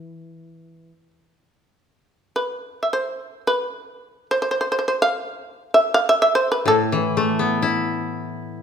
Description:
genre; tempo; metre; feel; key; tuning
japanese traditional, Japanese chamber music; free time; none; none; E miyako bushi; A4 = 440 Hz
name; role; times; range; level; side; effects
shamisen; melody; 0.0-8.4 s; A4 to F5; -18 LUFS; right 1 dB; none
koto; accompaniment; 0.0-8.6 s; A2 to E4; -21 LUFS; left 2 dB; none
room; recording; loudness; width
moderate recital hall reverb, RT60 1.6 s; none; -19 LUFS; side -7 dB against mid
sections
0.0-8.6 A section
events
none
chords
none

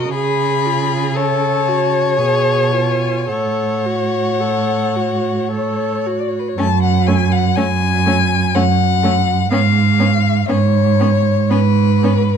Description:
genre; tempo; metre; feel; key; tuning
classical, slow romantic movement for string quartet; 52-63 BPM; 3/4; rubato; F# minor; A4 = 437 Hz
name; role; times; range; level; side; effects
rich violin; melody; 0.0-12.4 s; B4 to B5; -20 LUFS; left 10 dB; none
rich violin; second line; 0.0-12.1 s; C#4 to C#5; -21 LUFS; left 4 dB; none
rich viola; accompaniment; 0.0-12.1 s; A3 to A4; -23 LUFS; right 3 dB; none
warm cello; bass; 0.0-12.4 s; F#2 to C#3; -16 LUFS; right 4 dB; none
room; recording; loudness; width
light reverb; dark, warm production; -14 LUFS; side -7 dB against mid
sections
0.0-6.6 A section; 6.6-12.4 A section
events
none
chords
0.1 C#; 1.2 F#m/C#; 2.2 C#7/B; 3.3 F#m/A; 6.6 F#m; 9.5 C#7/G#

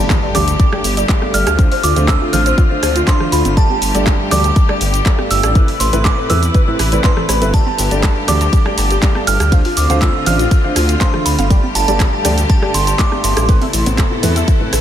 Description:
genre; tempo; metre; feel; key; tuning
progressive house; 121 BPM; 4/4; straight; G mixolydian; A4 = 441 Hz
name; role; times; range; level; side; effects
glassy synth bell; melody; 0.0-14.8 s; A5 to F6; -20 LUFS; right 2 dB; chorus, ping-pong delay
clear symphonic string section; sustained chords; 0.0-14.8 s; C3 to B4; -24 LUFS; left 2 dB; sidechain pumping
soft round pluck; arpeggios; 0.0-14.8 s; E4 to B5; -24 LUFS; left 2 dB; ensemble chorus, sidechain pumping, ping-pong delay
dark baby grand piano; stabs; 0.0-14.7 s; G2 to D5; -22 LUFS; right 1 dB; sidechain pumping, ping-pong delay
dark detuned saw bass; bass; 0.0-14.8 s; G1 to E2; -17 LUFS; equal; sidechain pumping
impact; sound effects; 0.0-1.6 s; none; -26 LUFS; equal; none
electronic kick drum; drums; 0.1-14.6 s; none; -13 LUFS; equal; none
pop drum kit; drums; 0.1-14.8 s; handclaps, hi-hat, ride cymbal, rim click, shaker; -21 LUFS; equal; sidechain pumping on hats, sidechain pumping on perc, sidechain pumping on cymbals
electronic rim click and congas; percussion; 0.1-14.8 s; none; -27 LUFS; right 5 dB; none
room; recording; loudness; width
light reverb, digital ambience; none; -11 LUFS; side -10 dB against mid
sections
0.0-14.8 A section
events
impact 0.0-1.6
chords
0.0 Gsus2; 1.6 Dm7; 3.6 Gsus2; 5.6 Amadd9; 7.5 Gsus2; 9.5 Dm7; 11.5 Gsus2; 13.5 Amadd9

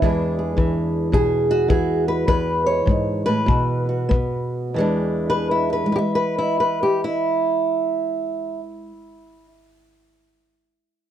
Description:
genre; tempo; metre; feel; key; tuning
acoustic country blues, solo or duo; 90-108 BPM; 4/4; swing 66% on 8ths; E mixolydian; A4 = 439 Hz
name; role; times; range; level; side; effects
fingerpicked old ladder-braced acoustic guitar; melody; 0.0-9.5 s; E2 to E5; -19 LUFS; right 1 dB; none
kick drum; drums; 0.0-4.3 s; none; -21 LUFS; left 2 dB; none
room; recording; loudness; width
light reverb; dark, warm production, faint mains hum; -18 LUFS; side -10 dB against mid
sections
0.0-4.8 A section; 4.8-7.4 B section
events
slowing down 0.0-4.8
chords
0.0 E7; 3.5 B5; 4.8 E7

